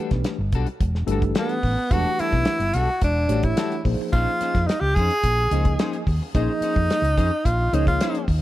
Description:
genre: electric jazz fusion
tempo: 108 BPM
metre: 4/4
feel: straight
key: unclear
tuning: A4 = 440 Hz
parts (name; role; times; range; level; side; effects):
- tine electric piano; accompaniment; 0.0-8.2 s; E3 to D#5; -28 LUFS; equal; medium stereo tremolo
- clean electric guitar; stabs; 0.0-8.3 s; G3 to B#4; -33 LUFS; left 6 dB; analog chorus
- hollow-body short-scale fingered electric bass; bass; 0.1-8.4 s; E1 to E#2; -23 LUFS; equal; none
- damped 70s drum kit; drums; 0.1-8.4 s; hi-hat, kick drum, snare drum; -24 LUFS; equal; none
- breathy tenor saxophone; melody; 1.4-8.3 s; B3 to G#4; -24 LUFS; right 1 dB; none
room: studio reverb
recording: none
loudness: -19 LUFS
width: side -15 dB against mid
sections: 0.0-8.4 A section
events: none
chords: 0.0 Em11; 3.9 A#m11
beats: 0.25 0.80 1.36 | 1.91 2.46 3.02 3.57 | 4.13 4.68 5.24 5.79 | 6.34 6.90 7.45 8.00

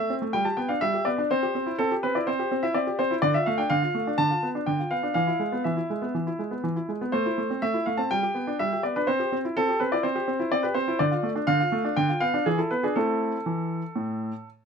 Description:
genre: classical-period piano sonatina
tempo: 123 BPM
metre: 4/4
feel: straight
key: A minor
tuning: A4 = 444 Hz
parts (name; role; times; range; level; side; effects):
- clear baby grand piano; solo; 0.0-14.5 s; A2 to A5; -23 LUFS; equal; none
room: light reverb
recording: close, detailed microphones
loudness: -23 LUFS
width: side -6 dB against mid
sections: 0.0-14.7 A section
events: none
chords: 0.3 G; 1.3 C; 3.2 Dm; 4.2 Bdim/D; 5.2 E; 7.1 Am; 8.1 G; 9.1 C; 11.0 Dm; 12.0 Bdim/D; 12.5 E5; 13.0 Am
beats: 0.33 0.82 | 1.30 1.79 2.27 2.75 | 3.23 3.72 4.20 4.68 | 5.17 5.66 6.15 6.64 | 7.14 7.62 8.11 8.59 | 9.08 9.56 10.04 10.52 | 11.00 11.48 11.97 12.46 | 12.96 13.46 13.96 14.46

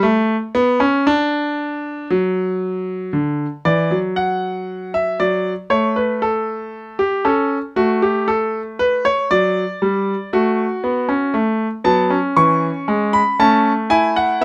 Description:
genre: classical, baroque-style 4-part fugue for grand piano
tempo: 58 BPM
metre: 4/4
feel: straight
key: D major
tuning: A4 = 440 Hz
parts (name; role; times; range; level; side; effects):
- bright concert grand piano; solo; 0.0-14.4 s; D3 to C#6; -18 LUFS; equal; none
room: light reverb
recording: close, detailed microphones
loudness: -18 LUFS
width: mono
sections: 0.0-3.1 A section; 3.1-14.4 B section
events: none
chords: 0.0 N.C.; 3.1 D; 5.2 D/F#; 7.3 A7; 9.3 D/F#; 11.3 A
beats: 0.01 1.05 2.09 | 3.12 4.16 5.19 6.23 | 7.26 8.29 9.31 10.32 | 11.34 12.36 13.39 14.41

